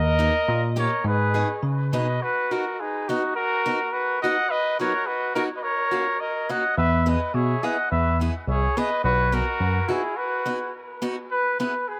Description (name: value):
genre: alpine folk, alpine dance band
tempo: 106 BPM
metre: 2/4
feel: rubato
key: B major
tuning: A4 = 440 Hz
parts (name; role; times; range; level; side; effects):
- clear flugelhorn; melody; 0.0-12.0 s; F#4 to F#5; -27 LUFS; equal; tape echo
- clear trumpet; second line; 0.0-10.7 s; D#4 to D#5; -31 LUFS; equal; none
- bell-like tine electric piano; bass; 0.0-2.2, 6.8-9.8 s; B1 to C#3; -26 LUFS; equal; lush chorus
- picked steel-string acoustic guitar; accompaniment; 0.2-11.7 s; F#3 to G#4; -33 LUFS; equal; tape echo
room: moderate spring reverb, RT60 2.8 s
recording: echo-heavy mix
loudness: -24 LUFS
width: mono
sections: 0.0-2.2 A section; 2.2-11.3 B section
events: break 10.2-11.3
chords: 0.0 D#; 1.1 G#m; 2.2 B; 4.5 B/F#; 5.6 F#; 6.8 E; 9.0 B; 11.3 E